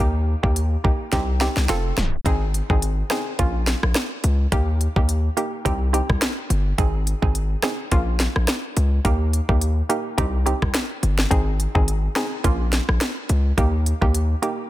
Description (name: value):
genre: dancehall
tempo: 106 BPM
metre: 4/4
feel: swing 56% on 16ths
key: unclear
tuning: A4 = 440 Hz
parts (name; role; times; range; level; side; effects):
- hollow square pluck; accompaniment; 0.0-14.7 s; Bb3 to A4; -26 LUFS; right 2 dB; chorus, sidechain pumping
- hard-hitting 808-style bass; bass; 0.0-14.3 s; F1 to Eb2; -21 LUFS; equal; none
- island pop drum kit; drums; 0.4-14.6 s; hi-hat, kick drum, rim click, snare drum; -22 LUFS; equal; none
room: digital ambience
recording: dense, heavily limited modern master, tape stop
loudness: -19 LUFS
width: side -15 dB against mid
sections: 0.0-2.3 A section; 2.3-14.7 B section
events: drum fill 1.1-2.3; tape stop 2.0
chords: 0.0 Eb; 1.1 Cm; 1.7 F; 2.3 Ab; 3.4 Bbm; 4.5 Eb; 5.7 Cm; 6.8 Ab; 7.9 Bbm; 9.1 Eb; 10.2 Cm; 11.3 Ab; 12.4 Bbm; 13.6 Eb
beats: 0.56 1.12 1.69 | 2.26 2.82 3.39 3.96 | 4.52 5.09 5.65 6.22 | 6.79 7.35 7.92 8.48 | 9.05 9.62 10.18 10.75 | 11.31 11.88 12.45 13.01 | 13.58 14.14